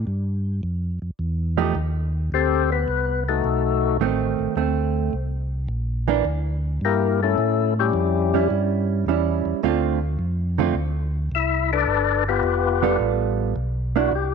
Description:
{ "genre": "jazz", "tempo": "107 BPM", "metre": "4/4", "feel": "swing 69% on 8ths", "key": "unclear", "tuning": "A4 = 440 Hz", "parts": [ { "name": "mellow tonewheel organ", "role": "bass", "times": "0.0-14.3 s", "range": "F1 to A2", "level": "-24 LUFS", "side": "equal", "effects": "overdrive, chorus vibrato, slow rotary speaker" }, { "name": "hollow-body jazz guitar", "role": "accompaniment", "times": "1.6-14.1 s", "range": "D3 to A4", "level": "-23 LUFS", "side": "right 11 dB", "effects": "none" }, { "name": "percussive tonewheel organ", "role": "melody", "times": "2.3-14.3 s", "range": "G3 to E5", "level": "-21 LUFS", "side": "left 10 dB", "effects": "slow rotary speaker, overdrive" } ], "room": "moderate echo chamber reverb, RT60 1.6 s, digital ambience", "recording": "1960s-style stereo with parts hard left and right", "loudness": "-20 LUFS", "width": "side -6 dB against mid", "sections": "0.0-14.3 A section", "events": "tonewheel organ solo 0.0-14.3", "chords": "0.0 N.C.; 0.6 F9; 2.9 F#dim7; 5.1 C9; 7.4 A7; 9.6 Dm7; 11.9 G9" }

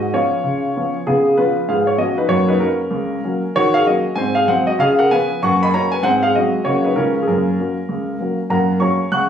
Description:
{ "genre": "jazz, stride piano", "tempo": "193 BPM", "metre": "4/4", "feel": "swing 61% on 8ths", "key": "F# major", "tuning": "A4 = 441 Hz", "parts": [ { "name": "warm grand piano", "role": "solo", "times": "0.0-9.3 s", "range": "C#2 to F#6", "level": "-15 LUFS", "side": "equal", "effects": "none" } ], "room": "light reverb", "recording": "recorded on a phone in the room, studio reverb", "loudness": "-15 LUFS", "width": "side -8 dB against mid", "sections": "0.0-8.5 A section", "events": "none", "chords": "0.0 C#7/G#; 2.3 F#; 3.5 D#m7; 4.2 G#7; 4.8 C#7; 5.4 F#; 6.0 G#7; 6.6 F#/C#; 7.0 C#; 7.3 F#" }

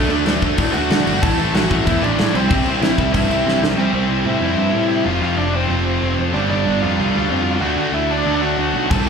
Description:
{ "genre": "punk rock", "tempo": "187 BPM", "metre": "4/4", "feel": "straight", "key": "unclear", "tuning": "A4 = 440 Hz", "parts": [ { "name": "bluesy overdriven lead guitar", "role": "melody", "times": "0.0-9.1 s", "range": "C4 to A5", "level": "-22 LUFS", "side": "equal", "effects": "distortion, slapback echo, tape echo" }, { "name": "overdriven electric guitar", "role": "riff", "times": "0.0-9.1 s", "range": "F2 to D4", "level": "-22 LUFS", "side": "right 11 dB", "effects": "slapback echo" }, { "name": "tight distorted guitar", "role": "riff", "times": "0.0-9.1 s", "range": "F2 to D4", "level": "-24 LUFS", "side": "left 13 dB", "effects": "distortion, slapback echo" }, { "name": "tight distorted guitar", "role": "riff", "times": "0.0-9.1 s", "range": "G2 to F4", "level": "-25 LUFS", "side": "left 2 dB", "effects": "distortion, slapback echo" }, { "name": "fuzz picked electric bass", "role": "bass", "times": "0.0-9.1 s", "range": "F1 to D3", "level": "-21 LUFS", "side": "left 1 dB", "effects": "overdrive" }, { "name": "big rock drum kit", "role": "drums", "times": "0.1-3.7, 8.9-9.1 s", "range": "crash cymbal, kick drum, snare drum", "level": "-20 LUFS", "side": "left 1 dB", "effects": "none" } ], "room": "small room reverb", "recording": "live gig heard through the venue's PA, club reverb", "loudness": "-15 LUFS", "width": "side -6 dB against mid", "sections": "0.0-3.8 A section; 3.8-9.1 B section", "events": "drum fill 3.5-3.8; half time 3.8-9.1", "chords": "0.0 D; 1.2 Am; 2.3 C; 5.1 F; 6.3 G; 7.6 D" }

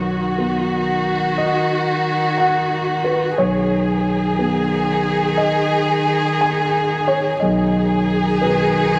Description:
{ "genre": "neoclassical piano and strings", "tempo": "60 BPM (dotted quarters)", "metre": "6/8", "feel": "rubato", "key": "G# minor", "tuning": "A4 = 438 Hz", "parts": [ { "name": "rich chamber violin section", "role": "melody", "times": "0.0-9.0 s", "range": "F#4 to G#4", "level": "-22 LUFS", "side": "equal", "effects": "none" }, { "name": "rich cello", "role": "second line", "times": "0.0-9.0 s", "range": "D#3", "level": "-26 LUFS", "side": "equal", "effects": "none" }, { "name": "dark concert grand piano", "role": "accompaniment", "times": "0.0-9.0 s", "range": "B1 to G#5", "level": "-22 LUFS", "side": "equal", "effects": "none" } ], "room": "moderate plate reverb, RT60 3.6 s", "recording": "none", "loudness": "-18 LUFS", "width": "mono", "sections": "0.0-9.0 A section", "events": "none", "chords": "0.0 B; 3.4 G#m/B" }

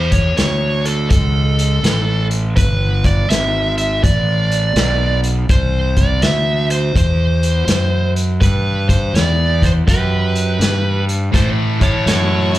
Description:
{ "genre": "blues rock power trio and southern rock", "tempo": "82 BPM", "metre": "4/4", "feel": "swing 65% on 8ths", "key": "unclear", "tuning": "A4 = 438 Hz", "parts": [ { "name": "fuzz lead guitar", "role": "melody", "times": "0.0-12.6 s", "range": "A4 to E5", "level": "-20 LUFS", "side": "right 1 dB", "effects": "distortion, slapback echo" }, { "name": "fuzz fingered electric bass", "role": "bass", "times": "0.0-12.6 s", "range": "G1 to A2", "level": "-16 LUFS", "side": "equal", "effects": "overdrive" }, { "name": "vintage drum kit", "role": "drums", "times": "0.1-12.6 s", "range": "hi-hat, kick drum, snare drum", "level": "-18 LUFS", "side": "equal", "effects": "none" }, { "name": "lightly driven lead guitar", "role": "second line", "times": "9.9-12.5 s", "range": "G4 to A4", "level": "-27 LUFS", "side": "right 3 dB", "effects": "slapback echo" }, { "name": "fuzz guitar", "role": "riff", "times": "11.3-12.6 s", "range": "A2 to A3", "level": "-19 LUFS", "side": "left 1 dB", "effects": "distortion, slapback echo" } ], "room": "small room ambience", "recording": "live gig heard through the venue's PA, club reverb", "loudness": "-13 LUFS", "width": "side -15 dB against mid", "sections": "0.0-12.6 A section", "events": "none", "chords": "0.0 A; 2.6 G; 5.5 C; 8.4 G; 11.3 A" }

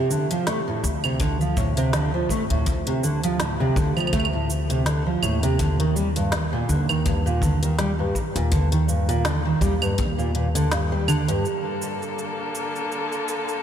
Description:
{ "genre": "folktronica", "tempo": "82 BPM", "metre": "4/4", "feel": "swing 56% on 16ths", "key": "unclear", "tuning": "A4 = 441 Hz", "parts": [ { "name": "fingerpicked steel-string acoustic guitar", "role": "arpeggios", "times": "0.0-11.4 s", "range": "G2 to A3", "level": "-23 LUFS", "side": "right 1 dB", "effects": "lush chorus, diffuse ambient delay" }, { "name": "organic electronic drum kit", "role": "drums", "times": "0.1-13.6 s", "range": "cabasa, claves, hi-hat, snare drum", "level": "-30 LUFS", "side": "right 1 dB", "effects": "overdrive, small room ambience" }, { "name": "upright bass", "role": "bass", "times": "0.8-11.4 s", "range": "D2 to Eb2", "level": "-25 LUFS", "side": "left 1 dB", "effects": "none" }, { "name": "kick drum", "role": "drums", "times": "1.2-10.1 s", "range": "none", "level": "-28 LUFS", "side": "left 1 dB", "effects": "small room ambience" }, { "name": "warm string quartet", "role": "sustained chords", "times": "11.4-13.6 s", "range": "D3 to A4", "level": "-27 LUFS", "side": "left 2 dB", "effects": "none" } ], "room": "moderate huge ambient reverb, RT60 4.3 s", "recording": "dreamy mix soaked in reverb", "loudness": "-20 LUFS", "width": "side -9 dB against mid", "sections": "0.0-11.4 A section; 11.4-13.6 B section", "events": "none", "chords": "0.0 Dm7; 5.6 Ebmaj7; 11.4 Bbmaj7" }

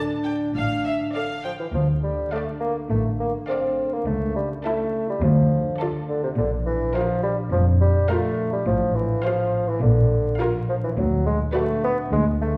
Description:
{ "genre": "cinematic, playful, whimsical film cue", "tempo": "104 BPM", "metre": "4/4", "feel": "straight", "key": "D minor", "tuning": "A4 = 443 Hz", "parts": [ { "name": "warm chamber violin section", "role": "melody", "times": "0.0-12.0 s", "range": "D5 to G5", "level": "-35 LUFS", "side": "equal", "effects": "none" }, { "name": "clear studio violin section", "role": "second line", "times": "0.0-12.0 s", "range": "A4 to D5", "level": "-37 LUFS", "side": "equal", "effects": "none" }, { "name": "warm chamber viola section", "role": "accompaniment", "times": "0.0-12.0 s", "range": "E4 to A4", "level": "-33 LUFS", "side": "equal", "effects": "none" }, { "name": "dark French horn section", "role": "sustained chords", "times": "0.0-1.4 s", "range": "D4", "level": "-29 LUFS", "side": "equal", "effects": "none" }, { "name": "concert harp", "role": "arpeggios", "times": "0.0-12.6 s", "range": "A2 to C5", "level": "-32 LUFS", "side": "equal", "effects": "none" }, { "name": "rich studio double bass section", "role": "bass", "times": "0.5-12.6 s", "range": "F1 to D2", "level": "-28 LUFS", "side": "equal", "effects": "none" }, { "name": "warm chamber cello section", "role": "bass", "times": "0.6-12.6 s", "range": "C#2 to Bb2", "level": "-28 LUFS", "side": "equal", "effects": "none" }, { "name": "mellow bassoon", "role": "accompaniment", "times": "1.4-12.5 s", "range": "C3 to C4", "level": "-27 LUFS", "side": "equal", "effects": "none" } ], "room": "wet recital hall reverb, RT60 1.7 s", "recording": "heard from further back in the room, vinyl crackle", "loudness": "-23 LUFS", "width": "mono", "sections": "0.0-1.7 A section; 1.7-12.6 B section", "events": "none", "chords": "0.0 Dm; 4.1 A/C#; 5.2 Dm; 6.4 Bb; 8.7 F/A; 9.8 Bb; 11.0 Bm/D" }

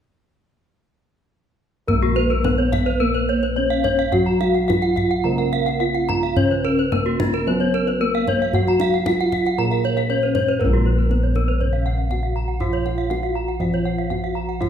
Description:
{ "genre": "Balinese gamelan", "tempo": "107-120 BPM", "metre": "4/4", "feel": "straight", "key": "Bb pelog", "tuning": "A4 = 441 Hz", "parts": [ { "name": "gamelan-type bronze metallophone", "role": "melody", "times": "1.9-14.7 s", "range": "Bb3 to Bb4", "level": "-23 LUFS", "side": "equal", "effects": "none" }, { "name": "gamelan-type bronze metallophone", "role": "accompaniment", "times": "1.9-14.7 s", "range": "Db3-30c to Cb4+20c", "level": "-29 LUFS", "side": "right 4 dB", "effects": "none" }, { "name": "gamelan-type bronze metallophone", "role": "arpeggios", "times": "1.9-14.7 s", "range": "F4-30c to Bb5", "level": "-24 LUFS", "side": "left 4 dB", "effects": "none" }, { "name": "gamelan-type bossed gongs", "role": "bass", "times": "1.9-14.7 s", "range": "Bb1 to Bb4", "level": "-23 LUFS", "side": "equal", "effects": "none" }, { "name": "kendang", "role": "percussion", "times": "1.9-14.7 s", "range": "none", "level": "-26 LUFS", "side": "equal", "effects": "none" }, { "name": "gamelan-type bronze metallophone", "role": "arpeggios", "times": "2.2-14.6 s", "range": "Gb4-20c to Gb5-20c", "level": "-27 LUFS", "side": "right 6 dB", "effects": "none" } ], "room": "wet recital hall reverb, RT60 1.3 s", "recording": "recorded in a church or concert hall", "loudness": "-17 LUFS", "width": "side -8 dB against mid", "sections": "1.9-10.6 A section; 10.6-14.7 B section", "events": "none", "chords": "none" }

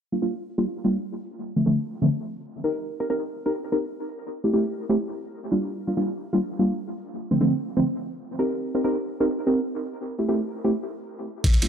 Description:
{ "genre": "drum and bass, jungle", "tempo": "167 BPM", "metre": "4/4", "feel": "swing 54% on 16ths", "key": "G minor", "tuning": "A4 = 440 Hz", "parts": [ { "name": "deep mellow chord stab", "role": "stabs", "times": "0.1-11.7 s", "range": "D3 to Bb4", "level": "-24 LUFS", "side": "equal", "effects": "chorus, dub echo" }, { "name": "breakbeat sampler-style drum kit", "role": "drums", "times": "11.4-11.7 s", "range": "kick drum, ride cymbal", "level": "-18 LUFS", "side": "equal", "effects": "studio reverb" } ], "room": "moderate plate reverb, RT60 2.0 s", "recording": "dark, warm production", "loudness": "-23 LUFS", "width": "side -8 dB against mid", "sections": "0.0-11.7 A section", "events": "filter sweep on synth stab 0.0-11.7", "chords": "0.0 Gm7; 1.4 Dm7; 2.8 Cm7; 4.3 Am7; 5.7 Gm7; 7.1 Dm7; 8.6 Cm7; 10.0 Am7" }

